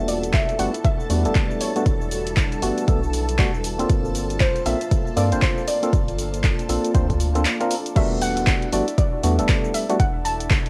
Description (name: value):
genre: deep house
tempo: 118 BPM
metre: 4/4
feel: swing 60% on 16ths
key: unclear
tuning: A4 = 440 Hz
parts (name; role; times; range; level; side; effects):
- soft round pluck; melody; 0.0-10.7 s; C5 to A5; -30 LUFS; equal; lush chorus, cassette tape, tape echo
- deep dark ambient pad; sustained chords; 0.0-7.9 s; G3 to D5; -36 LUFS; equal; chorus, built-in reverb, vintage 12-bit sampler grit, sidechain pumping, cassette tape
- percussive organ stab; stabs; 0.0-10.0 s; G3 to C5; -28 LUFS; equal; chorus, sidechain pumping, cassette tape, tape echo
- round analog bass; bass; 0.0-10.6 s; D1 to G2; -28 LUFS; equal; sidechain pumping
- airy breathy pad; texture; 0.0-10.7 s; Bb3 to A4; -36 LUFS; equal; none
- string machine, violins; texture; 0.0-8.0 s; A4 to A5; -37 LUFS; equal; ensemble chorus, cassette tape
- punchy analog drum machine; drums; 0.1-10.7 s; cabasa, crash cymbal, handclaps, hi-hat; -30 LUFS; equal; overdrive, cassette tape
- electronic kick drum; drums; 0.3-10.6 s; none; -23 LUFS; equal; overdrive, cassette tape
room: moderate studio reverb, RT60 0.5 s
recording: home recording on cassette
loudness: -21 LUFS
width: mono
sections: 0.0-8.0 A section; 8.0-10.7 B section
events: filter sweep on synth stab 0.0-8.0; break 7.5-8.0; drop 8.0-10.7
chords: 0.0 Em11; 3.9 Gm11; 8.0 Em11